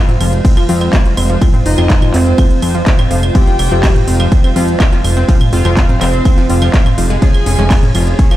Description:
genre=melodic techno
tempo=124 BPM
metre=4/4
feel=straight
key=F minor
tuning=A4 = 436 Hz
part: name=resonant sweep polysynth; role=melody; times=0.0-7.9 s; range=C4 to Ab4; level=-22 LUFS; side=right 2 dB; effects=chorus, sidechain pumping, dub echo
part: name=warm studio violin section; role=second line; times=0.0-7.9 s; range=C5 to Ab5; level=-26 LUFS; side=right 1 dB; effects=sidechain pumping, tape echo
part: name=evolving wavetable pad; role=sustained chords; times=0.1-8.4 s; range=Ab3 to F5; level=-22 LUFS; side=right 2 dB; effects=chorus, built-in reverb, sidechain pumping
part: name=fat analog bass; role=bass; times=0.0-8.1 s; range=F1 to F2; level=-14 LUFS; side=equal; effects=sidechain pumping
part: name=analog pluck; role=arpeggios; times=0.1-8.3 s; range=F3 to F5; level=-21 LUFS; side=left 2 dB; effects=chorus, sidechain pumping, tape echo
part: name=techno drum kit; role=drums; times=0.1-8.4 s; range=claves, handclaps, hi-hat, ride cymbal, toms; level=-19 LUFS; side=right 1 dB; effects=overdrive
part: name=electronic kick drum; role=drums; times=0.4-8.3 s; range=none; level=-11 LUFS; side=equal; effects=overdrive
part: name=synth brass stab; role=stabs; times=0.7-7.7 s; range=Db3 to F4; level=-22 LUFS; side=left 2 dB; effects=chorus, sidechain pumping, tape echo
room=little or no reverb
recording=played on a big sound system in a bare room, stone room reverb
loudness=-9 LUFS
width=side -14 dB against mid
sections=0.0-8.4 A section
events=none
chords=0.0 Fm; 7.2 Db/F

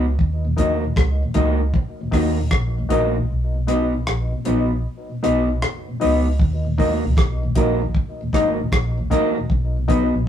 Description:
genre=roots reggae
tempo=77 BPM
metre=4/4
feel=swing 65% on 16ths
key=unclear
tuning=A4 = 440 Hz
part: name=mellow electric guitar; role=accompaniment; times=0.0-10.1 s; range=A#3 to B4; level=-22 LUFS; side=right 3 dB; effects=none
part: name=barky reed electric piano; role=stabs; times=0.0-10.1 s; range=D#4 to D#5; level=-24 LUFS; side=left 6 dB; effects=overdrive, fast tremolo
part: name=vintage muted fingered electric bass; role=bass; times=0.0-10.3 s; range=F#1 to D#2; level=-22 LUFS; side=equal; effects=none
part: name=deep reggae drum kit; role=drums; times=0.2-10.1 s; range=hi-hat, kick drum, rim click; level=-20 LUFS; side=equal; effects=none
part: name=mellow tonewheel organ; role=accompaniment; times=0.5-10.2 s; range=D#2 to D#4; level=-27 LUFS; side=left 2 dB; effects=slow rotary speaker, tape echo
room=moderate studio reverb, RT60 0.6 s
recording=rough rehearsal-room recording, tube saturation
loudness=-18 LUFS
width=side -9 dB against mid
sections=0.0-6.4 A section; 6.4-10.3 B section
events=kick muted 3.3-6.4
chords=0.2 D#m; 3.3 B; 6.4 D#m; 9.5 B

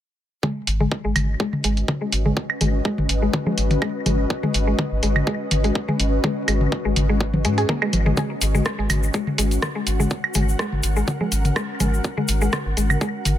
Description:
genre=minimal techno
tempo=124 BPM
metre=4/4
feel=swing 54% on 16ths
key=G# minor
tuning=A4 = 440 Hz
part: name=mallet-like synth pluck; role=riff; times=0.4-13.1 s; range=G#3 to G#4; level=-26 LUFS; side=left 1 dB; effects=chorus, sidechain pumping, ping-pong delay
part: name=electronic kick drum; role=drums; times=0.4-13.1 s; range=none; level=-25 LUFS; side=equal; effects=high-pass filter on kick, high-pass filter on room
part: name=electronic toms, claves and congas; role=percussion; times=0.4-13.4 s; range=none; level=-25 LUFS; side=equal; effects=ping-pong delay
part: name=ethereal airy pad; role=texture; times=1.7-13.4 s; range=C#4 to F#5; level=-28 LUFS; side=left 1 dB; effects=ensemble chorus, built-in reverb, sidechain pumping
part: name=round analog bass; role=bass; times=0.7-13.4 s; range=G#1 to G#2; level=-21 LUFS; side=equal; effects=sidechain pumping
part: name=garage drum kit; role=drums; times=0.7-13.4 s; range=hi-hat, rim click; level=-26 LUFS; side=right 1 dB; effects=none
part: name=tube shaker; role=percussion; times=8.2-13.4 s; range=none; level=-32 LUFS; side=left 6 dB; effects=none
room=little or no reverb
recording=none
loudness=-19 LUFS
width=side -12 dB against mid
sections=0.4-13.4 A section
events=filter sweep on analog synth bass 0.4-13.4; filter sweep on synth arpeggio sound 0.4-13.4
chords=0.4 G#m

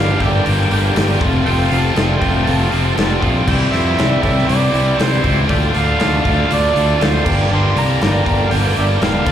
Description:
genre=classic rock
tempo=119 BPM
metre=4/4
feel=straight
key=G dorian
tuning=A4 = 440 Hz
part: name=overdriven harmonica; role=melody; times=0.0-9.3 s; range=F4 to C6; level=-22 LUFS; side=right 2 dB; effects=slapback echo
part: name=tonewheel organ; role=sustained chords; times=0.0-9.3 s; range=D4 to D5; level=-27 LUFS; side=equal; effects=none
part: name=distorted electric guitar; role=riff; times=0.0-9.3 s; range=F2 to A4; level=-18 LUFS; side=equal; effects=overdrive, slapback echo
part: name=fuzz fingered electric bass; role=bass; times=0.0-9.3 s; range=E1 to F2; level=-17 LUFS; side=equal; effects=overdrive
part: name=big rock drum kit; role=drums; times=0.2-9.3 s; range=crash cymbal, hi-hat, kick drum, snare drum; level=-20 LUFS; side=equal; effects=none
room=light reverb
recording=live gig heard through the venue's PA, club reverb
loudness=-13 LUFS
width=side -10 dB against mid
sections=0.0-9.3 A section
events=none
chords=0.0 Gm; 1.2 F; 3.5 C; 5.5 Dm; 7.3 Gm

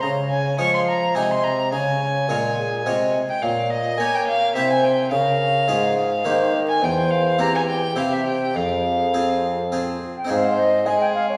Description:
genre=classical, baroque-style sonata movement with continuo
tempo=106 BPM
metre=3/4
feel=straight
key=F minor from 3.4 s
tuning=A4 = 440 Hz
part: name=mellow silver concert flute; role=melody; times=0.0-11.4 s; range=G4 to Ab5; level=-28 LUFS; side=equal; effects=none
part: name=rich violin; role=second line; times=0.0-11.4 s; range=Ab4 to Db6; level=-25 LUFS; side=equal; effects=none
part: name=harpsichord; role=accompaniment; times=0.0-11.4 s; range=E2 to Eb5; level=-28 LUFS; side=equal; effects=none
part: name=warm bassoon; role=bass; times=0.0-11.4 s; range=E2 to Bb3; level=-26 LUFS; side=equal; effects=none
room=wet recital hall reverb, RT60 1.7 s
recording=recorded in a church or concert hall, vinyl crackle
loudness=-21 LUFS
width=mono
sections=0.0-10.3 A section; 10.3-11.4 A section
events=none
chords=0.0 Db; 1.2 Ab/C; 1.7 Db; 3.4 Gdim/Bb; 4.5 C; 5.1 Db; 6.2 Eb; 6.8 C7/E; 8.0 C; 8.5 Fm; 10.3 Ab

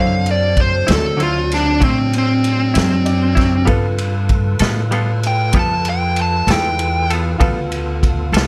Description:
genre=slow blues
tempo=64 BPM (dotted quarters)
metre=12/8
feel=straight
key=unclear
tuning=A4 = 440 Hz
part: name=dark smooth lead guitar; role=melody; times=0.0-7.1 s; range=C4 to A5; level=-20 LUFS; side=equal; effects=overdrive
part: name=bright upright piano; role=accompaniment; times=0.0-8.5 s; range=D4 to D5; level=-30 LUFS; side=equal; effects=none
part: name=clean electric guitar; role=accompaniment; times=0.0-8.5 s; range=D3 to A4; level=-25 LUFS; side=equal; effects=tremolo
part: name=tonewheel organ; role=sustained chords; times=0.0-8.5 s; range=F#3 to B4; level=-30 LUFS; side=equal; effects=slow rotary speaker, overdrive
part: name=upright bass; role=bass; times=0.0-8.5 s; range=C2 to A2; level=-21 LUFS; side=equal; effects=none
part: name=vintage drum kit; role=drums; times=0.3-8.5 s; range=kick drum, ride cymbal, snare drum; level=-22 LUFS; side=equal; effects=none
room=studio ambience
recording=none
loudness=-16 LUFS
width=mono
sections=0.0-8.5 A section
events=lead electric guitar solo 0.0-8.5; upright piano fill 2.7-3.7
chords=0.0 D9; 3.7 G9

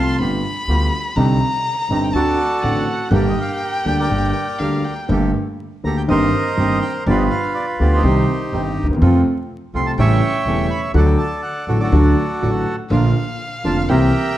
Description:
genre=tango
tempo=123 BPM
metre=4/4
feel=rubato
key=G minor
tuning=A4 = 440 Hz
part: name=bandoneon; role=melody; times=0.0-14.4 s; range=Eb4 to C6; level=-22 LUFS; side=right 2 dB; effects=none
part: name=clear violin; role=second line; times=0.0-5.1, 12.9-14.4 s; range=F5 to C6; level=-24 LUFS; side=left 2 dB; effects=none
part: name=warm concert grand piano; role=accompaniment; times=0.0-14.1 s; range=E1 to G4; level=-18 LUFS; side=equal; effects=none
part: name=bandoneon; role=stabs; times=0.0-14.1 s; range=Bb3 to Bb4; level=-30 LUFS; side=right 4 dB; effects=none
part: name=upright bass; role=bass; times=0.0-14.1 s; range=E1 to F2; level=-20 LUFS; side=equal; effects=none
room=wet large studio reverb, RT60 1.2 s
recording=vinyl crackle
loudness=-15 LUFS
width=side -13 dB against mid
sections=0.0-5.1 A section; 5.1-14.4 B section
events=none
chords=0.2 G7; 1.2 Cmadd9; 2.1 D7; 3.1 Gm; 5.1 Gmadd9; 6.1 Eb6/G; 7.1 G7; 8.0 Cm; 9.0 F; 10.0 A7; 10.9 D; 12.9 Bb

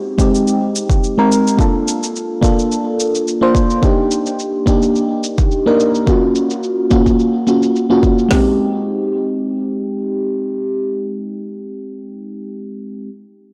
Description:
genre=sunset chillout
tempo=107 BPM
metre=4/4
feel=swing 54% on 16ths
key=unclear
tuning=A4 = 440 Hz
part: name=mellow FM electric piano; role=accompaniment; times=0.0-13.1 s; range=Ab3 to C5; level=-17 LUFS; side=equal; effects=chorus, phaser, tape echo
part: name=deep house drum kit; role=drums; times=0.2-8.5 s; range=hi-hat, kick drum, snare drum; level=-18 LUFS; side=equal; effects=none
part: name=shaker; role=drums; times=0.2-8.3 s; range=none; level=-28 LUFS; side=equal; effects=overdrive, low-pass filter on hats, low-pass filter on perc, low-pass filter on snare
room=moderate lush hall reverb, RT60 2.6 s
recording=blown-out, overdriven recording, overdrive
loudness=-16 LUFS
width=mono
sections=0.0-8.3 A section; 8.3-10.6 B section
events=none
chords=0.0 Abmaj9; 1.6 Bbmaj9; 3.8 Ebmaj7/Bb; 6.1 Gbmaj7/Bb; 8.3 Abmaj7

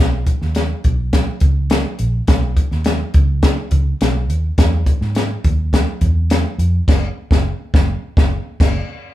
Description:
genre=uptempo 1960s-style soul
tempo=104 BPM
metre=4/4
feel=straight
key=B major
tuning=A4 = 440 Hz
part: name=vintage muted fingered electric bass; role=bass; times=0.0-8.8 s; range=F#1 to G#2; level=-18 LUFS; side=equal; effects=none
part: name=compact cocktail drum kit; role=drums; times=0.3-8.8 s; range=crash cymbal, hi-hat, kick drum, snare drum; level=-15 LUFS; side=equal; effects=none
room=light reverb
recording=band playing live in one room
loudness=-14 LUFS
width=side -14 dB against mid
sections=0.0-9.1 A section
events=band accent 6.9-9.1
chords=none

